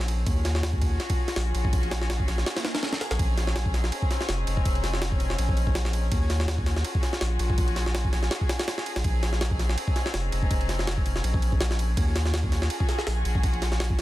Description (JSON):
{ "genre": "drum and bass, jungle", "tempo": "164 BPM", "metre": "4/4", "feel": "swing 55% on 16ths", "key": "unclear", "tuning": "A4 = 439 Hz", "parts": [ { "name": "dark studio string section", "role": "sustained chords", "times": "0.0-14.0 s", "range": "C4 to Ab4", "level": "-33 LUFS", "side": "left 2 dB", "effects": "none" }, { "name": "saturated sub bass", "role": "bass", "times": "0.0-14.0 s", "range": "F1 to Eb2", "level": "-26 LUFS", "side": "equal", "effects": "none" }, { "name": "jungle sampler-style drum kit", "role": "drums", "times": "0.0-14.0 s", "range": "hi-hat, kick drum, ride cymbal, snare drum", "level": "-26 LUFS", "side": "equal", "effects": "none" }, { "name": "swell", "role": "sound effects", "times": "2.5-3.2 s", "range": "none", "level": "-39 LUFS", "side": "right 4 dB", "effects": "none" } ], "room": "digital ambience", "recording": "dense, heavily limited modern master", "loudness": "-23 LUFS", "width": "side -16 dB against mid", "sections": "0.0-14.0 A section", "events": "swell 2.5-3.2", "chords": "0.3 Ebm11; 3.2 Bbm11; 6.1 Ebm11; 9.0 Bbm11; 12.0 Ebm11" }